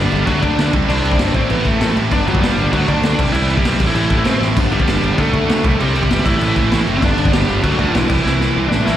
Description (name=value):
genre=punk rock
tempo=196 BPM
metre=4/4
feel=straight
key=unclear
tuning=A4 = 443 Hz
part: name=biting lead guitar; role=melody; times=0.0-9.0 s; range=E3 to D5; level=-19 LUFS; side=equal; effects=overdrive, tape echo
part: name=cranked stack guitar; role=riff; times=0.0-9.0 s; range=G2 to D4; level=-27 LUFS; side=left 10 dB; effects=overdrive, slapback echo
part: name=fuzz guitar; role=riff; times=0.0-9.0 s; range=G2 to D4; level=-24 LUFS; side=equal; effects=distortion, slapback echo
part: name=tight distorted guitar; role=riff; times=0.0-9.0 s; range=G2 to E4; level=-23 LUFS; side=right 11 dB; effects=distortion, slapback echo
part: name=fuzz picked electric bass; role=bass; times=0.0-9.0 s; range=F#1 to D2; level=-20 LUFS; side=equal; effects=overdrive
part: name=raw garage drum kit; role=drums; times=0.1-8.9 s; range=crash cymbal, kick drum, snare drum, splash cymbal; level=-18 LUFS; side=equal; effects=none
room=little or no reverb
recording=live gig heard through the venue's PA, recital hall reverb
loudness=-13 LUFS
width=side -11 dB against mid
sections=0.0-9.0 A section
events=drum fill 4.4, 8.2-9.0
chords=0.3 D; 0.7 C; 1.3 Am; 2.1 G; 2.7 D; 3.2 C; 3.8 Am; 4.6 G; 5.2 D; 5.6 C; 6.2 Am; 7.0 G; 7.6 D; 8.1 C